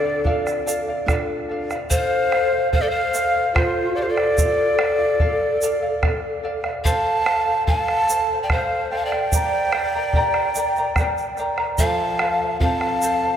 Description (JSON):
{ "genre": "andean folk, Andean ensemble", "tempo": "73 BPM", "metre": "3/4", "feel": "straight", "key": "unclear", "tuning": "A4 = 440 Hz", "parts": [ { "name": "breathy mellow quena", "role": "melody", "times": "0.0-13.4 s", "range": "C5 to A5", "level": "-22 LUFS", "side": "right 1 dB", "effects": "none" }, { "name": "breathy mellow pan flute", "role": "second line", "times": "0.0-13.4 s", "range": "F4 to F5", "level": "-24 LUFS", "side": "left 3 dB", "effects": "none" }, { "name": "charango", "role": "accompaniment", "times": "0.0-13.4 s", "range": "G4 to Bb5", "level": "-27 LUFS", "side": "equal", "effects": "none" }, { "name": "nylon-string guitar", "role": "accompaniment", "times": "0.0-1.7, 11.8-13.4 s", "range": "D3 to A4", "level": "-31 LUFS", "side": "right 2 dB", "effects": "none" }, { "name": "bombo", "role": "percussion", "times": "0.1-13.0 s", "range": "none", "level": "-24 LUFS", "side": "right 1 dB", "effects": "none" }, { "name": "egg shaker", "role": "percussion", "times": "0.5-13.2 s", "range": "none", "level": "-29 LUFS", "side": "right 5 dB", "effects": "none" } ], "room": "wet cathedral reverb, RT60 5.1 s", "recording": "in a vast, echoing space", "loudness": "-18 LUFS", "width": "side -9 dB against mid", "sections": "0.0-1.9 A section; 1.9-13.4 A section", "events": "none", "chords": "0.0 Dm; 1.9 F; 4.4 Dm; 6.8 F; 9.3 Gm; 11.8 F", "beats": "0.26 1.08 | 1.91 2.73 3.55 | 4.38 5.20 6.02 | 6.85 7.67 8.49 | 9.32 10.14 10.96 | 11.79 12.61" }